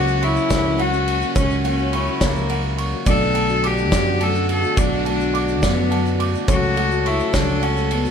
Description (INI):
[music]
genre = indie folk with a building arrangement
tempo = 70 BPM (dotted quarters)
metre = 6/8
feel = straight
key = unclear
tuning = A4 = 438 Hz
[part]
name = rich cello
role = melody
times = 0.0-8.1 s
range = A#3 to A4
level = -22 LUFS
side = left 4 dB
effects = none
[part]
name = dark fiddle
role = second line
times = 0.0-8.1 s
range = C#4 to A4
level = -28 LUFS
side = right 9 dB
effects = none
[part]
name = felt-muted upright piano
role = accompaniment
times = 0.0-8.1 s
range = B1 to D5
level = -32 LUFS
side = equal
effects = none
[part]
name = picked steel-string acoustic guitar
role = accompaniment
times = 0.0-8.1 s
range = B2 to F#4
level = -28 LUFS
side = left 11 dB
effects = none
[part]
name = mellow tonewheel organ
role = sustained chords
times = 0.0-8.1 s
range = C#3 to F#5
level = -31 LUFS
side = right 1 dB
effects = none
[part]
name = dark upright piano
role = arpeggios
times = 0.0-8.1 s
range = C#5 to D6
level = -27 LUFS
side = right 6 dB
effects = none
[part]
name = fingered electric bass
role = bass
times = 0.0-8.1 s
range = B1 to F#2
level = -23 LUFS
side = equal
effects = none
[part]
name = tube shaker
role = percussion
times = 0.1-8.1 s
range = none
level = -38 LUFS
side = left 10 dB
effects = none
[part]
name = loose indie drum kit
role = drums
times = 0.2-8.0 s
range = kick drum, ride cymbal, snare drum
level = -24 LUFS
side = equal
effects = none
[sound]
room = light reverb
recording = none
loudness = -17 LUFS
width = side -7 dB against mid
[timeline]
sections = 0.0-8.1 A section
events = none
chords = 0.0 F#/C#; 3.1 Bm7; 6.5 F#m/C#